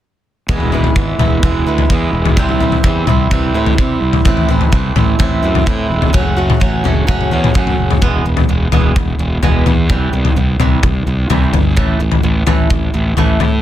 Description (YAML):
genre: quiet-loud alternative rock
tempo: 128 BPM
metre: 4/4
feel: straight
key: unclear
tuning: A4 = 437 Hz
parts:
  - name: picked swing-style acoustic guitar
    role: arpeggios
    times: 0.5-13.6 s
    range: A2 to F#4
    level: -18 LUFS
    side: right 3 dB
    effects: digital delay
  - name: fuzz fingered electric bass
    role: bass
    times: 0.5-13.6 s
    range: E1 to C3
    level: -17 LUFS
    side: equal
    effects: overdrive
  - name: loose indie drum kit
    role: drums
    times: 0.5-13.5 s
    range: kick drum, toms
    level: -14 LUFS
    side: left 1 dB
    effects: none
room: little or no reverb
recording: dense, heavily limited modern master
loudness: -11 LUFS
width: side -12 dB against mid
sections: 0.5-8.0 A section; 8.0-13.6 B section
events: none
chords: 0.5 E; 2.4 C; 4.3 Am; 6.1 F#m; 8.0 E; 9.9 C; 11.8 A5